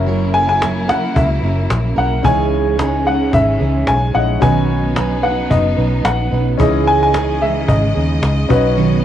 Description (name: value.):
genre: acoustic pop.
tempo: 110 BPM.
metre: 4/4.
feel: swing 55% on 16ths.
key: B major.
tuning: A4 = 440 Hz.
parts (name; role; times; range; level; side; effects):
picked steel-string acoustic guitar; accompaniment; 0.0-9.0 s; B2 to B4; -20 LUFS; right 8 dB; none.
warm grand piano; accompaniment; 0.0-9.0 s; C#4 to E5; -23 LUFS; left 9 dB; plate reverb.
clear studio string section; sustained chords; 0.0-9.0 s; C#3 to D#5; -23 LUFS; left 1 dB; none.
vintage muted fingered electric bass; bass; 0.0-9.0 s; F#1 to D#2; -18 LUFS; left 1 dB; none.
warm upright piano; melody; 0.3-8.5 s; D#5 to G#5; -18 LUFS; left 2 dB; plate reverb.
cajon; drums; 0.6-8.6 s; none; -19 LUFS; left 1 dB; none.
room: moderate small room reverb, RT60 0.5 s.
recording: home recording on cassette.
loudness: -13 LUFS.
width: side -10 dB against mid.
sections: 0.0-9.0 A section.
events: none.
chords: 0.0 F#7; 2.2 C#madd9; 4.4 Badd9; 6.6 C#madd9; 8.5 Badd9.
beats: | 0.08 0.62 1.16 1.71 | 2.25 2.79 3.34 3.88 | 4.42 4.97 5.51 6.06 | 6.60 7.14 7.69 8.23 | 8.78.